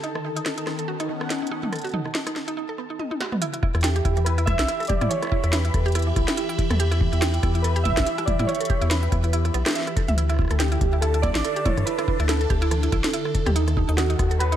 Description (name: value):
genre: IDM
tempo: 142 BPM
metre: 4/4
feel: swing 56% on 16ths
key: E dorian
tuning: A4 = 443 Hz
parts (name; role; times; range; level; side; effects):
- phased analog pad; sustained chords; 0.0-14.6 s; D3 to B5; -31 LUFS; equal; phaser, chorus
- mallet-like synth pluck; arpeggios; 0.0-14.6 s; D#3 to E5; -29 LUFS; right 4 dB; chorus, phaser, tape echo
- industrial drum kit; drums; 0.0-14.6 s; hi-hat, rim click, snare drum, toms; -28 LUFS; equal; none
- bubbling stepped-filter texture; texture; 0.0-2.6 s; A5; -40 LUFS; right 1 dB; chorus, built-in reverb
- electronic kick drum; drums; 3.6-14.3 s; none; -25 LUFS; left 1 dB; none
- rubbery square bass; bass; 3.7-14.6 s; D1 to A2; -22 LUFS; equal; none
- warbly lo-fi synth keys; melody; 3.8-14.6 s; F#4 to E5; -28 LUFS; right 1 dB; chorus, tape echo
room: light reverb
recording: none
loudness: -20 LUFS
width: side -11 dB against mid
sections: 0.0-3.4 A section; 3.4-14.6 B section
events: filter sweep on drum 0.0-3.4; drum fill 3.0-3.4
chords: 0.0 B7/D#; 3.4 Em; 10.2 Dsus2; 13.6 B7/D#